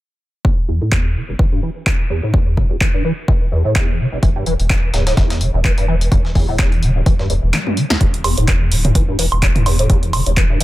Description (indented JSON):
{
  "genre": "acid house",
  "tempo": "127 BPM",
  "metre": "4/4",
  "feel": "swing 56% on 16ths",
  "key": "E minor",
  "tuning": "A4 = 437 Hz",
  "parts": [
    { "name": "liquid acid bass", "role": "riff", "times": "0.4-10.6 s", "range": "E1 to E3", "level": "-20 LUFS", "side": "equal", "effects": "phaser, overdrive, analog chorus, cassette tape, sidechain pumping, digital delay" },
    { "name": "electronic kick drum", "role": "drums", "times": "0.4-10.5 s", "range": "none", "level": "-16 LUFS", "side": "equal", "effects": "none" },
    { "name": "punchy analog drum machine", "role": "drums", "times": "0.9-10.6 s", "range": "handclaps, hi-hat, snare drum, toms, woodblock", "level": "-20 LUFS", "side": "equal", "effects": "none" },
    { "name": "round analog bass", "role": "bass", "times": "4.2-10.6 s", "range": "D1 to E1", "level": "-19 LUFS", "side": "equal", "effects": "sidechain pumping" },
    { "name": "dusty soul sampler-style drum kit", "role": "drums", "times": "4.2-7.9 s", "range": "hi-hat, snare drum", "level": "-27 LUFS", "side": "left 1 dB", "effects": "high-pass filter on hats, high-pass filter on snare" }
  ],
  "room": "little or no reverb",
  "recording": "dense, heavily limited modern master",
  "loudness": "-14 LUFS",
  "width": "side -16 dB against mid",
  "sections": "0.4-8.0 A section; 8.0-10.6 B section",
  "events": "filter sweep on acid bass 0.4-8.0, 8.0-10.6; kick drops out 7.5-8.0; drum fill 7.5-8.0",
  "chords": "none"
}